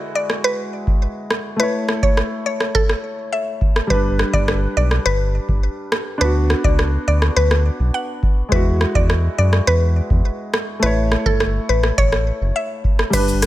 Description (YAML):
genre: dancehall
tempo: 104 BPM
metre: 4/4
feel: straight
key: unclear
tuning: A4 = 441 Hz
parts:
  - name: warm baby grand piano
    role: accompaniment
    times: 0.0-13.5 s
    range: G3 to C#5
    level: -24 LUFS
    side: equal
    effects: none
  - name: mallet-like synth pluck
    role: melody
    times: 0.2-13.2 s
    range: A4 to F#5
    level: -22 LUFS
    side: equal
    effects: chorus, digital delay
  - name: booming analog drum machine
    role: drums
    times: 0.3-13.5 s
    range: crash cymbal, hi-hat, kick drum, rim click, shaker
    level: -19 LUFS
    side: equal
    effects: none
  - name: round analog bass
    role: bass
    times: 3.9-13.5 s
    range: F#1 to F#2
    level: -18 LUFS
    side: equal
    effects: none
room: digital ambience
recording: none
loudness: -16 LUFS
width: side -15 dB against mid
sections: 0.0-13.1 A section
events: none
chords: 0.0 Eadd9; 1.6 A; 3.9 G; 6.2 D6; 8.5 Eadd9; 10.8 A